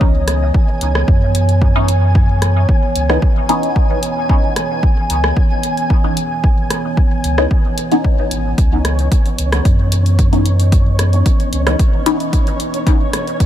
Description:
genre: dub techno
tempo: 112 BPM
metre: 4/4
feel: straight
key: C# minor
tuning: A4 = 440 Hz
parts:
  - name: dark analog pad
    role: sustained chords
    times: 0.0-13.5 s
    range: E3 to G#5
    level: -22 LUFS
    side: right 1 dB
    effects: wide subtle chorus, sidechain pumping
  - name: filtered dub chord stab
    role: stabs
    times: 0.0-13.5 s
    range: E3 to D#4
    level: -21 LUFS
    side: left 1 dB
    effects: phaser, sidechain pumping, dub echo
  - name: pure sine sub bass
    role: bass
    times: 0.0-11.7 s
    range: G#1 to F#2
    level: -15 LUFS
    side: equal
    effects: sidechain pumping
  - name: electronic kick drum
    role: drums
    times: 0.0-13.5 s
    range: none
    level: -14 LUFS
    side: equal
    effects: none
  - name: flickering grainy texture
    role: texture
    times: 0.0-13.5 s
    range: C#4 to G#5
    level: -26 LUFS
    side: equal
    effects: built-in reverb, sidechain pumping
  - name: deep house drum kit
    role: drums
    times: 0.3-13.5 s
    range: hi-hat, rim click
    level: -23 LUFS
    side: equal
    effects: none
room: little or no reverb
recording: none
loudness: -12 LUFS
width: side -11 dB against mid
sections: 0.0-13.5 A section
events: none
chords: 0.0 C#m9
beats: | 0.01 0.54 1.08 1.62 | 2.15 2.69 3.22 3.76 | 4.29 4.83 5.37 5.90 | 6.44 6.97 7.51 8.04 | 8.58 9.12 9.65 10.19 | 10.72 11.26 11.79 12.33 | 12.87 13.40

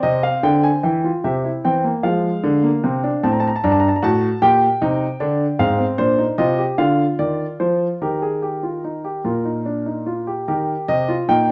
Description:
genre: classical, baroque-style 3-part fugue for grand piano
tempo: 50 BPM (dotted quarters)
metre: 6/8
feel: straight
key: Eb major from 5.6 s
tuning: A4 = 440 Hz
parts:
  - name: warm grand piano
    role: solo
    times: 0.0-11.5 s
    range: G2 to Bb5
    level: -19 LUFS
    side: equal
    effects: none
room: wet stone room reverb, RT60 1.0 s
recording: heard from further back in the room, nothing above 7.8 kHz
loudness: -19 LUFS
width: mono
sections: 0.8-10.5 A section; 10.5-11.5 B section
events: none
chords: 0.0 Cm; 0.8 C7; 2.0 Fm; 3.2 D7; 4.4 Gm/Bb; 5.6 F5; 8.0 Eb; 9.2 Bb; 10.5 Eb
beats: | 0.83 2.04 | 3.24 4.42 | 5.59 6.78 | 8.01 9.25 | 10.49

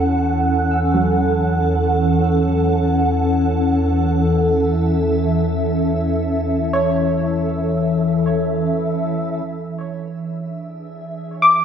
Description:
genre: ambient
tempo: free time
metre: none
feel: none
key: unclear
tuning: A4 = 440 Hz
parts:
  - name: glassy FM pad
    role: sustained chords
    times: 0.0-11.6 s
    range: E3 to F#5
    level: -18 LUFS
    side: equal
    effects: ensemble chorus, built-in reverb, phaser
  - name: soft round pluck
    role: arpeggios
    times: 0.0-11.6 s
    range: F#3 to E6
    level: -19 LUFS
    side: equal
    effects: lush chorus, tape echo
  - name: deep rumbling drone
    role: bass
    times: 0.0-9.4 s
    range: E2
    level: -23 LUFS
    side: right 1 dB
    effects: built-in reverb, phaser
room: wet lush hall reverb, RT60 2.7 s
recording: none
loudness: -16 LUFS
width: side -8 dB against mid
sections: 0.0-9.5 A section; 9.5-11.6 B section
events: none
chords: 0.0 F#m/E; 9.5 E7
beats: free time

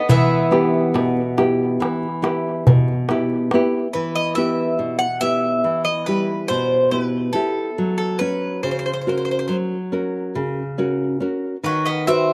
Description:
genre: greek folk, Greek bouzouki band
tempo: 140 BPM (eighths)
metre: 9/8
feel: straight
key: E harmonic minor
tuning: A4 = 439 Hz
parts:
  - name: Greek bouzouki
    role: melody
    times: 0.0-12.3 s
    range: A4 to F#5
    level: -25 LUFS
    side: equal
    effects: slapback echo
  - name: Greek bouzouki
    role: second line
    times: 0.0-3.0, 11.7-12.3 s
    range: F#3 to C4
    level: -28 LUFS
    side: equal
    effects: none
  - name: nylon-string guitar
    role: accompaniment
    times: 0.1-12.3 s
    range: B2 to C#5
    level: -23 LUFS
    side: equal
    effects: none
  - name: darbuka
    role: percussion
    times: 0.1-3.7 s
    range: none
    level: -19 LUFS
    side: equal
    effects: none
room: little or no reverb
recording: recorded outdoors, with no room sound, lossy compression artefacts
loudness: -20 LUFS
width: mono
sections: 0.0-3.9 A section; 3.9-12.3 B section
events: none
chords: 0.1 Em; 7.8 F#; 11.7 B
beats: | 0.10 0.53 0.95 1.38 1.80 2.23 2.66 3.08 3.51 | 3.94 4.37 4.79 5.22 5.65 6.08 6.50 6.93 7.36 | 7.79 8.22 8.65 9.08 9.51 9.93 10.36 10.79 11.22 | 11.65 12.08

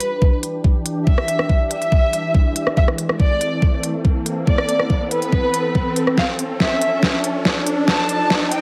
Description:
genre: heavy wobble dubstep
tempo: 141 BPM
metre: 4/4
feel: half-time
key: unclear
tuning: A4 = 440 Hz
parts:
  - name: warm chamber violin section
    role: melody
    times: 0.0-8.6 s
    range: B4 to A5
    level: -24 LUFS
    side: equal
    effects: delay
  - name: evolving wavetable pad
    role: sustained chords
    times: 0.0-8.6 s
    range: E3 to A4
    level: -28 LUFS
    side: equal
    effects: ensemble chorus, built-in reverb, sidechain pumping
  - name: dubstep drum kit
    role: drums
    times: 0.0-8.6 s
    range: hi-hat, rim click, snare drum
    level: -23 LUFS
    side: equal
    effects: none
  - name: riser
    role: sound effects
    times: 1.9-8.6 s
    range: none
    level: -29 LUFS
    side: equal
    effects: none
  - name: electronic kick drum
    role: drums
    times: 0.2-8.4 s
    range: none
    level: -19 LUFS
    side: equal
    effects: overdrive
room: light reverb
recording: high-pass filter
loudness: -18 LUFS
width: mono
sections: 0.0-8.6 A section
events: build-up 0.0-8.6; filter sweep 0.0-8.6; riser 1.9-8.6; drum fill 6.2-8.6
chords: 0.0 Em7; 2.8 Am; 6.2 Dm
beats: 0.22 0.64 | 1.07 1.50 1.92 2.35 | 2.77 3.20 3.62 4.05 | 4.47 4.90 5.33 5.75 | 6.18 6.60 7.03 7.45 | 7.88 8.30

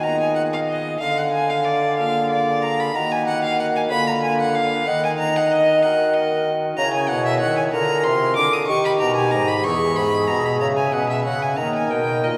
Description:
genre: classical, baroque-style sonata movement with continuo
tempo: 62 BPM (dotted quarters)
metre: 6/8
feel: straight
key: Eb minor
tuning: A4 = 439 Hz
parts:
  - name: rich violin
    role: melody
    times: 0.0-12.4 s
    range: D5 to D#6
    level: -25 LUFS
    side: equal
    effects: none
  - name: mellow baroque flute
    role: second line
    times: 0.0-12.4 s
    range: G4 to Gb5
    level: -25 LUFS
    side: equal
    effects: none
  - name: pipe organ, principal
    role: accompaniment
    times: 0.0-12.4 s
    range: E2 to E5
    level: -29 LUFS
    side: equal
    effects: none
  - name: warm bassoon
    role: bass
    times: 0.0-12.4 s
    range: E2 to Eb3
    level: -25 LUFS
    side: equal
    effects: none
room: wet cathedral reverb, RT60 4.2 s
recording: recorded in a church or concert hall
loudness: -20 LUFS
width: mono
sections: 0.0-12.4 A section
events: none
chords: 0.0 Fm7b5/Eb; 1.0 Bb7/D; 2.9 Ebm; 3.9 Bb/D; 4.9 Ebm; 6.8 A#m7b5; 7.7 A#7; 8.7 D#; 9.6 E; 10.6 C#m; 11.6 D#5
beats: 0.04 | 1.01 1.98 | 2.94 3.91 | 4.87 5.83 | 6.78 7.73 | 8.68 9.64 | 10.61 11.57

